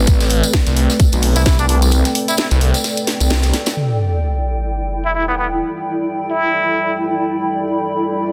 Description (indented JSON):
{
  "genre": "bass house",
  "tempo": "130 BPM",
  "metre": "4/4",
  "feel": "swing 57% on 16ths",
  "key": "E minor",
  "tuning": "A4 = 438 Hz",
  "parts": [
    { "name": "dark analog pad", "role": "sustained chords", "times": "0.0-8.3 s", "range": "G3 to E5", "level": "-28 LUFS", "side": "equal", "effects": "chorus, sidechain pumping" },
    { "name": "phased detuned saw bass", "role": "bass", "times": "0.0-3.5 s", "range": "A1 to C2", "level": "-17 LUFS", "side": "equal", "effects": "phaser, tube saturation, sidechain pumping" },
    { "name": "granular cloud pad", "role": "texture", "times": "0.0-8.3 s", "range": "E4 to B5", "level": "-24 LUFS", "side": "equal", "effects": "built-in reverb, sidechain pumping" },
    { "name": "damped 70s drum kit", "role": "drums", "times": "0.1-3.8 s", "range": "hi-hat, snare drum", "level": "-32 LUFS", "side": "equal", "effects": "none" },
    { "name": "electronic kick drum", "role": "drums", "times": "0.1-1.6 s", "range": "none", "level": "-16 LUFS", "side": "equal", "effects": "studio ambience" },
    { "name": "garage drum kit", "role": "drums", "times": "0.1-3.7 s", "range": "hi-hat, snare drum", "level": "-24 LUFS", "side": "equal", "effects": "low-pass filter on hats, studio ambience, low-pass filter on snare" },
    { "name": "tambourine", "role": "percussion", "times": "0.1-3.7 s", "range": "none", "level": "-27 LUFS", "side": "equal", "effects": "none" },
    { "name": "trumpet with plunger mute", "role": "melody", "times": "1.4-7.0 s", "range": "B3 to E4", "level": "-22 LUFS", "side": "equal", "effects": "digital delay" },
    { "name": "sub drop and riser", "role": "sound effects", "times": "3.8-8.3 s", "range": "none", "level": "-23 LUFS", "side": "equal", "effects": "none" }
  ],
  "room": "moderate lush hall reverb, RT60 2.1 s",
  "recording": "dense, heavily limited modern master",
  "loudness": "-17 LUFS",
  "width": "mono",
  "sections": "0.0-3.8 A section; 3.8-8.3 B section",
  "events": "kick drops out 1.9-3.8; band accent 3.3; drum fill 3.5; impact 3.8-5.6",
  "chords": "0.0 Amadd9; 3.8 Em7"
}